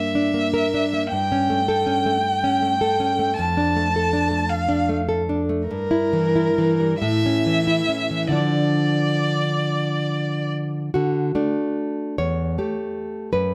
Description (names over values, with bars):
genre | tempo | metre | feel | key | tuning
romantic duo for violin and classical guitar | 44-54 BPM (dotted quarters) | 6/8 | rubato | D minor | A4 = 440 Hz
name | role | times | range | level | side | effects
rich violin | melody | 0.0-10.5 s | Bb4 to A5 | -25 LUFS | equal | slapback echo
nylon-string guitar | accompaniment | 0.0-13.5 s | E2 to C#5 | -23 LUFS | equal | none
room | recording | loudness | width
light reverb | close, detailed microphones | -22 LUFS | mono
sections
0.0-11.0 A section; 11.0-13.5 B section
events
none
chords
0.0 Em7b5/G; 1.1 A7/G; 3.4 Dm/F; 5.7 Edim/G; 7.0 A; 8.3 Dm; 11.0 D; 12.2 A7/E